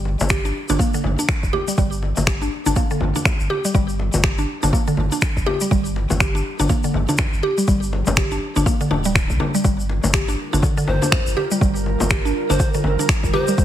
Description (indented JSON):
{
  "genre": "afro house",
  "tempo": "122 BPM",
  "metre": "4/4",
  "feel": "swing 60% on 16ths",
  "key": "G minor",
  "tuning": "A4 = 440 Hz",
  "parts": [
    { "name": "warm sub bass", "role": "bass", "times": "0.0-13.6 s", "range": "D1 to D2", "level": "-23 LUFS", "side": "equal", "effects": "sidechain pumping" },
    { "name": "congas", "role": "percussion", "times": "0.1-13.5 s", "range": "none", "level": "-25 LUFS", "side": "left 3 dB", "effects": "none" },
    { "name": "tube shaker", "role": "percussion", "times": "0.2-13.6 s", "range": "none", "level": "-30 LUFS", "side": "left 2 dB", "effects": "none" },
    { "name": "mallet-like synth pluck", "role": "arpeggios", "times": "0.3-13.6 s", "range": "D3 to G4", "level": "-23 LUFS", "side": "right 1 dB", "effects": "chorus, phaser, sidechain pumping, digital delay" },
    { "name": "electronic finger snaps", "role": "drums", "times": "0.3-13.2 s", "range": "none", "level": "-23 LUFS", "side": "equal", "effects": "studio reverb" },
    { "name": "electronic kick drum", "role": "drums", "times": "0.3-13.6 s", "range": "none", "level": "-20 LUFS", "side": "equal", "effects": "overdrive, studio reverb" },
    { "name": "ethereal airy pad", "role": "sustained chords", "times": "10.4-13.6 s", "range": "D3 to Bb4", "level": "-26 LUFS", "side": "right 4 dB", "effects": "ensemble chorus, built-in reverb, sidechain pumping" },
    { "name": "breathy mellow polished pan flute", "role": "melody", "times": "10.9-13.6 s", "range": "C5", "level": "-28 LUFS", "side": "left 2 dB", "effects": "digital delay" }
  ],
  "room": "light reverb, small room ambience",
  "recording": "heavily compressed radio sound",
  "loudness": "-17 LUFS",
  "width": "side -11 dB against mid",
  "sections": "0.0-13.6 A section",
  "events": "none",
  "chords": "0.0 Gm7"
}